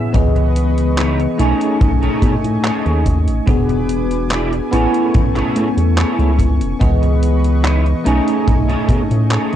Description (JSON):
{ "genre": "vaporwave", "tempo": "72 BPM", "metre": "4/4", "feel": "straight", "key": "C# minor", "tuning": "A4 = 443 Hz", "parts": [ { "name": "bell-like tine electric piano", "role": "accompaniment", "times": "0.0-9.6 s", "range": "A2 to G#5", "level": "-18 LUFS", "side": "left 1 dB", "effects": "fast stereo tremolo, wide subtle chorus, analog delay" }, { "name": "lush unison pad", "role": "sustained chords", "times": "0.0-9.6 s", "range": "A2 to D6", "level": "-28 LUFS", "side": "equal", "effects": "chorus" }, { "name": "electric guitar at the edge of break-up", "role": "riff", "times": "0.0-9.6 s", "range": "D#4 to E5", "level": "-23 LUFS", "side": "right 2 dB", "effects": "ensemble chorus, vintage 12-bit sampler grit, analog delay" }, { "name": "chorused synth bass", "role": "bass", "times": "0.1-9.6 s", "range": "E1 to B2", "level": "-16 LUFS", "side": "equal", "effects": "tube saturation" }, { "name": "detuned 8-bit digital drum machine", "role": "drums", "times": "0.1-9.6 s", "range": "handclaps, hi-hat", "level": "-24 LUFS", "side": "equal", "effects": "vintage 12-bit sampler grit" }, { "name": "kick drum", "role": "drums", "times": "0.1-9.1 s", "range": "none", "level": "-17 LUFS", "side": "equal", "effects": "vintage 12-bit sampler grit" } ], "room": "small room ambience", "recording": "dark, warm production", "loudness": "-13 LUFS", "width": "side -11 dB against mid", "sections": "0.1-9.6 A section", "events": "none", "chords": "0.1 C#m9; 1.4 B13; 3.5 E7; 4.7 Amaj7; 6.8 C#m9; 8.1 B13" }